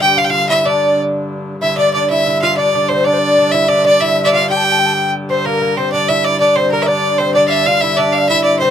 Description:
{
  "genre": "medieval",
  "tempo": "126 BPM (dotted quarters)",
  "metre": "6/8",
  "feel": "straight",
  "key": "G dorian",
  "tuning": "A4 = 438 Hz",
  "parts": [
    { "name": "bright fiddle", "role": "melody", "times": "0.0-8.7 s", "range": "Bb4 to G5", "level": "-14 LUFS", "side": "equal", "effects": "none" },
    { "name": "breathy tenor recorder", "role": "second line", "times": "0.0-8.7 s", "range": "Bb4 to A5", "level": "-18 LUFS", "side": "left 4 dB", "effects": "none" },
    { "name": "lute", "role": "second line", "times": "0.0-8.7 s", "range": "Bb3 to G4", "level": "-19 LUFS", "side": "right 4 dB", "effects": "none" },
    { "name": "warm hurdy-gurdy", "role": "drone", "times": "0.0-8.7 s", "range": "G2 to D3", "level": "-22 LUFS", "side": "left 1 dB", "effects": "none" }
  ],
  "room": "little or no reverb",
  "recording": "close, detailed microphones",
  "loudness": "-11 LUFS",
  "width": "side -9 dB against mid",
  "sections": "0.0-5.5 A section; 5.5-8.7 B section",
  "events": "speeding up 0.0-8.7",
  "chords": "none",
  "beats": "0.16 | 0.65 1.13 | 1.62 2.10 | 2.58 3.06 | 3.54 4.02 | 4.50 4.98 | 5.45 5.93 | 6.40 6.88 | 7.35 7.82 | 8.29"
}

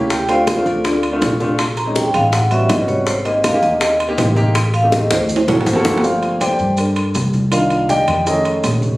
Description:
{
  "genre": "Afro-Cuban jazz",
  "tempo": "162 BPM",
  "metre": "4/4",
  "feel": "straight",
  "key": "G minor",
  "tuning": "A4 = 440 Hz",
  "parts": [
    { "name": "warm grand piano", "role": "accompaniment", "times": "0.0-9.0 s", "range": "Eb3 to G5", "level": "-18 LUFS", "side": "equal", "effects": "none" },
    { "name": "upright bass", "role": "bass", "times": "0.0-9.0 s", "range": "G1 to G2", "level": "-20 LUFS", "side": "equal", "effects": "none" },
    { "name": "vibraphone with medium hard mallets", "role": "melody", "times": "0.1-5.9 s", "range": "D4 to C6", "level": "-18 LUFS", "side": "equal", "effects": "none" },
    { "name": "bongos", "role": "percussion", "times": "0.1-5.9 s", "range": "none", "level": "-21 LUFS", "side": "left 2 dB", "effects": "none" },
    { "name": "congas", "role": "percussion", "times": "0.1-9.0 s", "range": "none", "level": "-26 LUFS", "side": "equal", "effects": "none" },
    { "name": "maracas", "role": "percussion", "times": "0.1-9.0 s", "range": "none", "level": "-31 LUFS", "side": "right 1 dB", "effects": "none" },
    { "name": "timbales", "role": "percussion", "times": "0.3-8.8 s", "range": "none", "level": "-24 LUFS", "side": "right 2 dB", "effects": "none" }
  ],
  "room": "light reverb",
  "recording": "recorded on a phone in the room, studio reverb",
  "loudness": "-14 LUFS",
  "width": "side -18 dB against mid",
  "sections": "0.0-6.0 A section; 6.0-9.0 A section",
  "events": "vibraphone solo 0.0-6.0; drum fill 5.1-6.0; grand piano solo 6.0-9.0",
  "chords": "0.1 Dm7; 1.6 Bbm11; 2.3 A13; 3.1 Abmaj9; 4.6 Am7b5; 5.3 D7b13; 6.0 Gm11; 7.5 Cm9; 8.3 F7alt",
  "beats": "| 0.10 0.47 0.85 1.22 | 1.59 1.96 2.33 2.70 | 3.07 3.44 3.81 4.18 | 4.55 4.93 5.30 5.67 | 6.04 6.41 6.78 7.15 | 7.53 7.90 8.27 8.64"
}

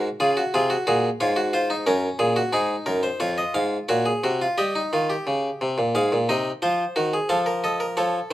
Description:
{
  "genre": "classical, baroque-style 3-part fugue for harpsichord",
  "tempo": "89 BPM",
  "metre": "4/4",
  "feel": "straight",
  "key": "Db major",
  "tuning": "A4 = 439 Hz",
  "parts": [
    { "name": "harpsichord", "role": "solo", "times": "0.0-8.3 s", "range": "F2 to F5", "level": "-20 LUFS", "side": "equal", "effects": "none" }
  ],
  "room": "light reverb",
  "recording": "none",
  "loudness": "-20 LUFS",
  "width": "side -14 dB against mid",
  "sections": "0.0-4.6 A section; 4.6-8.3 B section",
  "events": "none",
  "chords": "0.0 Db/F; 0.5 Fm; 1.9 Gb; 3.2 Db/F; 4.6 Eb7; 5.9 Ab; 7.3 F7",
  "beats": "0.54 1.20 | 1.87 2.54 3.21 3.89 | 4.58 5.27 5.95 6.62 | 7.29 7.97"
}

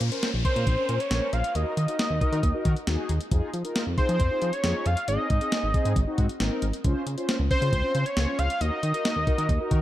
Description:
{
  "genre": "synth-pop",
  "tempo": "136 BPM",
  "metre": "4/4",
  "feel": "straight",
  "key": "unclear",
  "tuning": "A4 = 440 Hz",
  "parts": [
    { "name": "chorused synth bass", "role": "bass", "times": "0.0-9.8 s", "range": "Ab1 to F3", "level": "-26 LUFS", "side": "equal", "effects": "none" },
    { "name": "clean 12-bit digital drum machine", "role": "drums", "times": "0.0-9.8 s", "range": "hi-hat, kick drum, snare drum", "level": "-27 LUFS", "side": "equal", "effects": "none" },
    { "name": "downlifter", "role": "sound effects", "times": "0.0-3.3 s", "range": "none", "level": "-38 LUFS", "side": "left 1 dB", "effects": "none" },
    { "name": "mellow synth brass", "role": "accompaniment", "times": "0.1-9.8 s", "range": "C4 to C5", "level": "-32 LUFS", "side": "left 1 dB", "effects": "chorus" },
    { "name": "fat analog lead", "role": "melody", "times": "0.4-9.8 s", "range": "C5 to F5", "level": "-28 LUFS", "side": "equal", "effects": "chorus, tape echo" }
  ],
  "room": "light reverb",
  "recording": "dark, warm production",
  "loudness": "-23 LUFS",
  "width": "side -14 dB against mid",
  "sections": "0.0-9.8 A section",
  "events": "none",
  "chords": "0.0 Bbmadd9; 1.6 Ebm; 3.3 Fm7; 5.1 Ab; 6.8 Dbmaj7; 8.6 Ebm",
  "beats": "0.23 0.67 1.11 | 1.55 1.99 2.43 2.87 | 3.32 3.76 4.20 4.64 | 5.08 5.52 5.96 6.40 | 6.84 7.29 7.73 8.17 | 8.61 9.05 9.49"
}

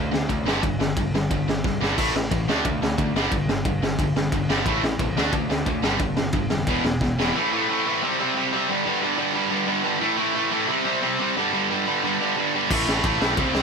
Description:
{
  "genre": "punk rock",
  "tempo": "179 BPM",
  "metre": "4/4",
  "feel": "straight",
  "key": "unclear",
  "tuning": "A4 = 440 Hz",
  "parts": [
    { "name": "distorted electric guitar", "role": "riff", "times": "0.0-13.6 s", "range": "E2 to D4", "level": "-22 LUFS", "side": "equal", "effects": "overdrive" },
    { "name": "modern bright picked electric bass", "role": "bass", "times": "0.0-7.3, 12.7-13.6 s", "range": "E1 to D2", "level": "-29 LUFS", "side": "equal", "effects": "none" },
    { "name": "raw garage drum kit", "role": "drums", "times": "0.1-7.3, 12.7-13.6 s", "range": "crash cymbal, kick drum, ride cymbal, snare drum", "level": "-26 LUFS", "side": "equal", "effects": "none" }
  ],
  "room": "light reverb",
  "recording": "none",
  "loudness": "-20 LUFS",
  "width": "side -5 dB against mid",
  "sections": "0.0-7.3 A section; 7.3-13.6 B section",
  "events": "drum fill 1.6-2.0, 7.0-7.3",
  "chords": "0.5 G5; 2.0 A5; 2.5 D5; 3.2 G5; 4.7 Am; 5.2 D5; 5.8 G5; 6.7 E5; 7.3 A5; 8.0 C5; 8.7 G5; 10.0 A5; 10.7 C5; 11.4 G5; 12.7 A5",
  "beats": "0.30 | 0.63 0.97 1.31 1.64 | 1.98 2.31 2.65 2.98 | 3.32 3.65 3.99 4.33 | 4.66 5.00 5.33 5.67 | 6.00 6.33 6.67 7.00 | 7.34 7.67 8.01 8.35 | 8.68 9.01 9.35 9.68 | 10.02 10.35 10.69 11.02 | 11.36 11.69 12.03 12.36 | 12.70 13.04 13.37"
}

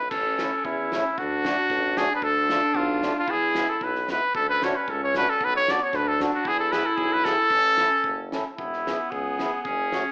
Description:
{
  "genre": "alpine folk, alpine dance band",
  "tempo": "114 BPM",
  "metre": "2/4",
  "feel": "rubato",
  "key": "A major",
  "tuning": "A4 = 440 Hz",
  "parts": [
    { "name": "warm trumpet", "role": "melody", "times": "0.0-10.1 s", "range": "E4 to D5", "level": "-22 LUFS", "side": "equal", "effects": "none" },
    { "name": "warm tuba", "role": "bass", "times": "0.0-10.0 s", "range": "E1 to E2", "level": "-34 LUFS", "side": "equal", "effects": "none" },
    { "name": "clear clarinet", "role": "second line", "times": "0.1-10.1 s", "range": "B3 to E4", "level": "-30 LUFS", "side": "equal", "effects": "none" },
    { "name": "loose indie drum kit", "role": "drums", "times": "0.1-10.0 s", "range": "crash cymbal, hi-hat, kick drum, snare drum", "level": "-35 LUFS", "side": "equal", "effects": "none" },
    { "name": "mellow accordion", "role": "accompaniment", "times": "0.4-10.0 s", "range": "G#3 to A4", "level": "-31 LUFS", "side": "equal", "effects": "none" }
  ],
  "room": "moderate large studio reverb, RT60 1.2 s",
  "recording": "band playing live in one room, AM radio sound",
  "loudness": "-21 LUFS",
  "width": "side -30 dB against mid",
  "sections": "0.1-8.6 A section; 8.6-10.1 B section",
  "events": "none",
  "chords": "0.1 A; 1.2 D; 2.2 Dm; 3.3 E; 4.3 D; 5.4 Bm; 6.4 E; 7.5 A; 8.6 E",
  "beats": "| 0.11 0.65 | 1.18 1.70 | 2.22 2.74 | 3.27 3.81 | 4.34 4.88 | 5.40 5.93 | 6.45 6.97 | 7.50 8.04 | 8.58 9.12 | 9.65"
}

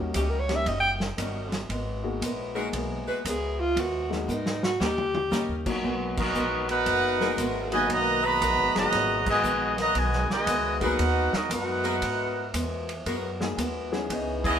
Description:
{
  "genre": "jazz, big band swing",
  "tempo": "116 BPM",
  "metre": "4/4",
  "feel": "swing 66% on 8ths",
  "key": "G# minor",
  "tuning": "A4 = 440 Hz",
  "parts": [
    { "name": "warm grand piano", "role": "accompaniment", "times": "0.0-14.6 s", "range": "B2 to G#4", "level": "-33 LUFS", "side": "left 4 dB", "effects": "none" },
    { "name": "upright bass", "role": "bass", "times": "0.0-14.6 s", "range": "F#1 to G#2", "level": "-33 LUFS", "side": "equal", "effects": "none" },
    { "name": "bright saxophone section", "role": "sustained chords", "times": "0.1-14.6 s", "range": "E3 to D#5", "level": "-34 LUFS", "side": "left 1 dB", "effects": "none" },
    { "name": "vintage drum kit", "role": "drums", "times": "0.1-14.5 s", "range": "crash cymbal, hi-hat, kick drum, ride cymbal, snare drum, toms", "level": "-33 LUFS", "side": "equal", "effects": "none" },
    { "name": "warm alto saxophone", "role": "melody", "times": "0.2-5.8 s", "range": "A#3 to G5", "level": "-27 LUFS", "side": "equal", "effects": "none" },
    { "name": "picked steel-string acoustic guitar", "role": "accompaniment", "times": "0.2-14.5 s", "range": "C#3 to A#4", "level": "-34 LUFS", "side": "equal", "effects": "none" },
    { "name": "clear trumpet section", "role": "melody", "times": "6.2-14.6 s", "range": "B3 to B5", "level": "-24 LUFS", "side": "right 1 dB", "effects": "none" },
    { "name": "clear trombone section", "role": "second line", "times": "6.2-14.6 s", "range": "A#2 to F#4", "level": "-33 LUFS", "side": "right 1 dB", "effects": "none" }
  ],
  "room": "wet studio reverb, RT60 0.9 s",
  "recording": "band playing live in one room",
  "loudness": "-24 LUFS",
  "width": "side -8 dB against mid",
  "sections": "0.0-5.8 A section; 5.8-14.6 B section",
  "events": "alto saxophone solo 0.0-5.8; drum fill 4.3-5.3; band accent 6.1, 9.2, 14.4",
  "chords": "0.0 D#7#9; 1.7 G#m9; 4.8 D#7; 5.8 G#m9",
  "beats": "0.15 0.67 1.18 | 1.70 2.22 2.74 3.25 | 3.77 4.29 4.80 5.32 | 5.83 6.35 6.86 7.38 | 7.89 8.41 8.93 9.44 | 9.96 10.47 10.99 11.51 | 12.03 12.54 13.06 13.58 | 14.10"
}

